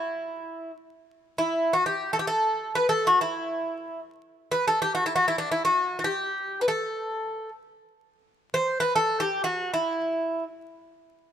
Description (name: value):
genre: Turkish makam ensemble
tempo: free time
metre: none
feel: none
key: E makam ussak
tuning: A4 = 440 Hz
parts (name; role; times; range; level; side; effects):
- Greek bouzouki; solo; 0.0-10.4 s; D4 to C5; -24 LUFS; equal; none
room: moderate plate reverb, RT60 2.3 s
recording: minimal, uncompressed stereo recording, vinyl crackle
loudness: -24 LUFS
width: side -9 dB against mid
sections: 0.0-11.1 A section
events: none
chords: none